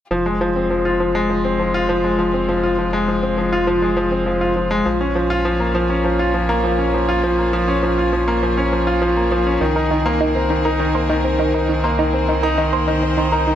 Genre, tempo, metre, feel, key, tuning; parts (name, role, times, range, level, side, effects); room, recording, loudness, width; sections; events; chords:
electronica; 101 BPM; 4/4; straight; F minor; A4 = 442 Hz
bright string quartet; sustained chords; 0.1-13.6 s; Ab3 to Db5; -31 LUFS; left 1 dB
bright concert grand piano; riff; 0.1-13.6 s; Eb3 to F4; -17 LUFS; left 1 dB; digital delay
round analog bass; bass; 0.1-13.6 s; F1 to C2; -24 LUFS; right 1 dB
analog pluck; arpeggios; 9.6-13.5 s; Eb4 to C5; -22 LUFS; right 2 dB; chorus, digital delay
moderate concert hall reverb, RT60 2.2 s; -16 LUFS; side -10 dB against mid
0.1-13.6 A section
fade-in on string quartet 0.1-13.6
0.1 Fmadd9; 4.9 Bbm7; 9.6 Abadd9/C